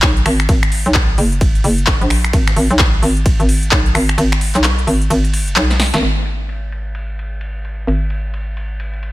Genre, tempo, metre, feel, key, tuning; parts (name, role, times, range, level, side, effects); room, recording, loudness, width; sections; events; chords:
bass house; 130 BPM; 4/4; swing 61% on 16ths; G# minor; A4 = 440 Hz
hollow knocking FM bass; bass; 0.0-9.1 s; F#1 to B1; -16 LUFS; equal; overdrive, sidechain pumping
big-room dance drum kit; drums; 0.0-6.0 s; finger snaps, handclaps, hi-hat, ride cymbal, snare drum; -18 LUFS; equal
electronic kick drum; drums; 0.0-3.8 s; -15 LUFS; equal
vintage drum kit; drums; 0.0-9.1 s; ride cymbal, snare drum; -31 LUFS; equal; sidechain pumping on cymbals, high-pass filter on cymbals, low-pass filter on cymbals, high-pass filter on snare, low-pass filter on snare, high-pass filter on room, low-pass filter on room
little or no reverb; -12 LUFS; side -17 dB against mid
0.0-6.0 A section; 6.0-9.1 B section
drop 0.0-6.0; kick drops out 4.2-6.0; drum fill 5.7-6.0; band accent 5.9